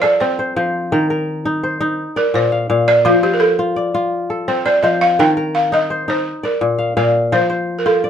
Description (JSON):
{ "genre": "west african traditional, West African string and xylophone music", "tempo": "112 BPM (dotted quarters)", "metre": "12/8", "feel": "straight", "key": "F mixolydian", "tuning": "A4 = 440 Hz", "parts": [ { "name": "balafon", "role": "melody", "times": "0.0-8.1 s", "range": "F4 to G5", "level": "-16 LUFS", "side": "right 1 dB", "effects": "none" }, { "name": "kora", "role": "arpeggios", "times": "0.0-8.1 s", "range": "Bb2 to F5", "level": "-17 LUFS", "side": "left 2 dB", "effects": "none" } ], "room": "moderate studio ambience, RT60 0.5 s", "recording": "minimal, uncompressed stereo recording", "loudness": "-14 LUFS", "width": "side -8 dB against mid", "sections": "0.0-8.1 A section", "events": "balafon solo 0.0-8.1", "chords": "0.0 F; 0.9 Eb5; 2.0 Bb; 3.1 F; 5.2 Eb; 6.3 Bb; 7.3 F" }